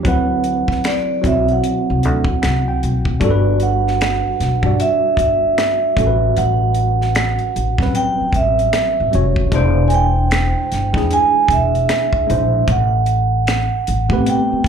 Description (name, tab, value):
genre	R&B, neo-soul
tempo	76 BPM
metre	4/4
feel	swing 62% on 16ths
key	G major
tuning	A4 = 439 Hz
part	tine electric piano	accompaniment	0.0-14.7 s	F#3 to G5	-21 LUFS	equal	overdrive, fast stereo tremolo, slapback echo
part	tight funk drum kit	drums	0.0-14.7 s	finger snaps, hi-hat, kick drum, snare drum	-21 LUFS	left 1 dB	none
part	vibraphone with medium mallets	melody	0.1-14.7 s	D5 to G#5	-18 LUFS	right 4 dB	slapback echo
part	upright bass	bass	0.1-14.7 s	E1 to A2	-18 LUFS	left 1 dB	none
room	studio ambience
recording	live gig heard through the venue's PA, club reverb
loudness	-14 LUFS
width	side -7 dB against mid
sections	0.0-3.2 A section; 3.2-14.7 B section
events	tine electric piano fill 2.0-3.2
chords	0.0 D13; 3.2 Gmaj7; 6.0 A13; 9.5 E7alt; 12.7 Am9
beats	| 0.04 0.83 1.62 2.41 | 3.20 3.99 4.78 5.57 | 6.36 7.15 7.94 8.73 | 9.52 10.31 11.10 11.89 | 12.68 13.47 14.26